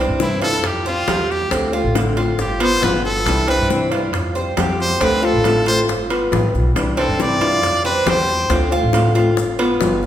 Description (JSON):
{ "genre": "latin, Cuban son and guajira", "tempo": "137 BPM", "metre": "4/4", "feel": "straight", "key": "C major", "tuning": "A4 = 439 Hz", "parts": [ { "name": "flamenco guitar", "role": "accompaniment", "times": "0.0-10.1 s", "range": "C3 to G4", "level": "-21 LUFS", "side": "left 2 dB", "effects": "none" }, { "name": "Cuban tres", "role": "arpeggios", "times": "0.0-10.0 s", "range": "B3 to C5", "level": "-22 LUFS", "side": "right 2 dB", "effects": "none" }, { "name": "upright bass", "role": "bass", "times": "0.0-10.1 s", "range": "G1 to G2", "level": "-22 LUFS", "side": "equal", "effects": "none" }, { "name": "brilliant trumpet", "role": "melody", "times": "0.2-8.5 s", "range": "E4 to D5", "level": "-20 LUFS", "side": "equal", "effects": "none" }, { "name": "bongos", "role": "percussion", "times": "0.2-10.1 s", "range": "none", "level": "-26 LUFS", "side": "left 5 dB", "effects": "none" }, { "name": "maracas", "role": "percussion", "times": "0.2-10.1 s", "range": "none", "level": "-38 LUFS", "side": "left 5 dB", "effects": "none" }, { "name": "timbales", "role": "percussion", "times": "0.2-10.0 s", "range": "none", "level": "-28 LUFS", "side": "right 4 dB", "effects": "none" } ], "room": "wet recital hall reverb, RT60 1.7 s", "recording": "recorded in a church or concert hall", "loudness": "-15 LUFS", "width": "side -11 dB against mid", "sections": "0.0-10.1 A section", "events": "trumpet solo 0.0-10.1", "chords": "0.0 Cadd9; 0.6 Fsus2; 1.5 Dm7; 2.4 G7; 3.3 Cadd9; 4.1 Fsus2; 5.0 Dm7; 5.9 G7; 6.8 Cadd9; 7.6 Fsus2; 8.5 Dm7; 9.4 G7" }